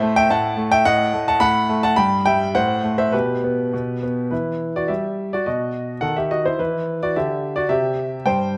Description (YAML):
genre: classical-period piano sonatina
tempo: 107 BPM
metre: 2/4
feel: rubato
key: E minor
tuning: A4 = 439 Hz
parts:
  - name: clear baby grand piano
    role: solo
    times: 0.0-8.6 s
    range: G2 to B5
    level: -20 LUFS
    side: equal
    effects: none
room: moderate recital hall reverb, RT60 1.3 s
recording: close, detailed microphones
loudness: -20 LUFS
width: mono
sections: 0.0-4.3 A section; 4.3-8.6 B section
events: none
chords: 0.0 F#m7b5/A; 0.8 B7/A; 2.0 Em/G; 2.5 F#dim/A; 3.1 G/B; 4.3 Em; 5.5 B; 6.6 Em; 7.7 C